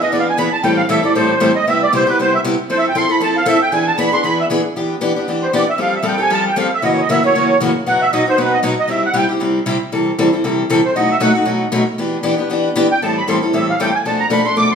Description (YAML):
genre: jazz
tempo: 233 BPM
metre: 4/4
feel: swing 57% on 8ths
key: E minor from 4.8 s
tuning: A4 = 441 Hz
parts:
  - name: musette accordion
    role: melody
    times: 0.0-14.8 s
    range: B4 to D6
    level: -16 LUFS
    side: right 2 dB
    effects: none
  - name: picked steel-string acoustic guitar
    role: accompaniment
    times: 0.0-14.7 s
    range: F#2 to A4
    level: -16 LUFS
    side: left 1 dB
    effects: none
room: wet large studio reverb, RT60 1.2 s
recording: band playing live in one room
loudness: -13 LUFS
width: side -6 dB against mid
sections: 0.0-4.8 A section; 4.8-13.0 A section; 13.0-14.8 A section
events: accordion solo 0.0-4.8, 4.8-14.8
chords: 0.0 E7; 0.6 Am7; 1.7 Cmaj7; 2.7 Fmaj7; 3.7 E7; 4.8 Em7; 5.8 Fadd9; 6.8 F#7; 7.8 B; 8.9 C; 9.9 Am7/C; 10.9 B7; 12.0 Em7; 13.0 Am7; 14.0 Bm7b5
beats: 0.11 0.37 | 0.63 0.89 1.14 1.40 | 1.66 1.92 2.17 2.43 | 2.69 2.95 3.21 3.46 | 3.72 3.98 4.24 4.50 | 4.75 5.01 5.27 5.53 | 5.79 6.04 6.30 6.56 | 6.82 7.08 7.33 7.59 | 7.85 8.11 8.37 8.62 | 8.88 9.14 9.40 9.66 | 9.91 10.17 10.43 10.69 | 10.95 11.20 11.46 11.72 | 11.98 12.23 12.49 12.75 | 13.01 13.27 13.53 13.79 | 14.04 14.30 14.56